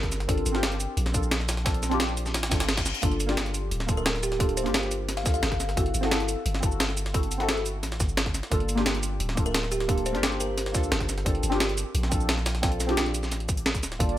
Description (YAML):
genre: liquid drum and bass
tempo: 175 BPM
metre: 4/4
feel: straight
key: unclear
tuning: A4 = 440 Hz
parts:
  - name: deep mellow chord stab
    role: accompaniment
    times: 0.0-14.2 s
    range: Bb3 to A4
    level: -31 LUFS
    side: equal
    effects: chorus, phaser, tape echo
  - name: long sustained 808-style bass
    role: bass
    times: 0.0-14.2 s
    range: D1 to D2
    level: -30 LUFS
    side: equal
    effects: none
  - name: electronic kick drum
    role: drums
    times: 0.0-14.1 s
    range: none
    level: -27 LUFS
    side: equal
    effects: none
  - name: jungle sampler-style drum kit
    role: drums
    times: 0.0-14.1 s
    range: hi-hat, snare drum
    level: -33 LUFS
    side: equal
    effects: high-pass filter on hats, high-pass filter on snare
  - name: breakbeat sampler-style drum kit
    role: drums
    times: 0.1-14.2 s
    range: hi-hat, shaker, snare drum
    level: -30 LUFS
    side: right 1 dB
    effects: none
  - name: reverse cymbal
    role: sound effects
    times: 2.5-3.0 s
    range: none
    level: -35 LUFS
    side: left 6 dB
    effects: none
  - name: kalimba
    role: melody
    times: 4.0-5.7, 9.5-10.7 s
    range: G4 to F5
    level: -34 LUFS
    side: equal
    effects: tape echo
  - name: airy breathy pad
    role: sustained chords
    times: 14.0-14.2 s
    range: Bb3 to D5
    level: -30 LUFS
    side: right 7 dB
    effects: chorus, phaser, sidechain pumping
room: light reverb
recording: none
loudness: -24 LUFS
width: side -13 dB against mid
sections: 0.0-14.0 A section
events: drop 0.0-14.0; reverse cymbal 2.5-3.0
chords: 0.3 Bbmaj9/G; 3.0 Gm9; 5.8 Am7/G; 8.5 Gm9; 11.3 Bbmaj9/G